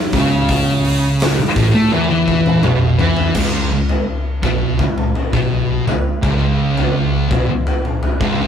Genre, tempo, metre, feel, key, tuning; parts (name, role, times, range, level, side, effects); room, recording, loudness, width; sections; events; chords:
stoner and doom metal; 84 BPM; 4/4; straight; A4 = 440 Hz
thick fuzz guitar; riff; 0.1-8.5 s; C#2 to A3; -20 LUFS; left 6 dB; distortion
thick fuzz guitar; riff; 0.1-8.5 s; C#2 to A3; -18 LUFS; right 5 dB; distortion
tine electric piano; bass; 0.1-8.5 s; A1 to A2; -24 LUFS; left 1 dB; medium stereo tremolo, overdrive
big rock drum kit; drums; 0.1-8.4 s; crash cymbal, hi-hat, kick drum, snare drum, toms; -18 LUFS; left 1 dB
light reverb; rough rehearsal-room recording, warm saturation; -14 LUFS; side -8 dB against mid
0.0-3.4 A section; 3.4-8.5 B section
drum fill 1.9-3.4
0.0 Aadd9; 3.4 N.C.